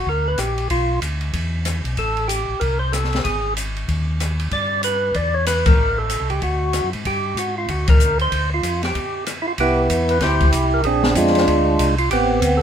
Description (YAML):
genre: soul jazz organ trio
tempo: 189 BPM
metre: 4/4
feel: swing 62% on 8ths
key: C major from 9.6 s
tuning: A4 = 438 Hz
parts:
  - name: percussive tonewheel organ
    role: melody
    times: 0.0-12.6 s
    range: Ab3 to D5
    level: -19 LUFS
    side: right 1 dB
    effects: slow rotary speaker, overdrive
  - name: mellow tonewheel organ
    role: bass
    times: 0.0-12.6 s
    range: Ab1 to Ab2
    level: -23 LUFS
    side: equal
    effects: chorus vibrato, slow rotary speaker
  - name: open jazz drum kit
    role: drums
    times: 0.1-12.5 s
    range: hi-hat, kick drum, ride cymbal, rim click, snare drum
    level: -23 LUFS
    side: left 1 dB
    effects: none
room: light reverb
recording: minimal, uncompressed stereo recording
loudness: -17 LUFS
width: side -8 dB against mid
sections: 0.0-9.6 A section; 9.6-12.6 B section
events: band accent 5.6, 7.8; break 8.9-9.6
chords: 0.0 G5; 0.7 Bdim; 1.3 E5; 2.0 Am7; 3.2 Ab5; 4.5 G; 5.1 A#dim/E; 5.8 Am; 6.4 D; 7.0 G5; 8.3 Dm; 8.9 N.C.; 9.6 Cmaj7; 10.8 Bb9; 12.1 Am9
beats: 0.07 0.39 | 0.70 1.02 1.34 1.66 | 1.98 2.29 2.61 2.93 | 3.25 3.56 3.88 4.20 | 4.51 4.83 5.15 5.47 | 5.78 6.10 6.42 6.73 | 7.05 7.37 7.68 8.00 | 8.32 8.63 8.95 9.27 | 9.58 9.90 10.21 10.53 | 10.85 11.16 11.48 11.79 | 12.11 12.42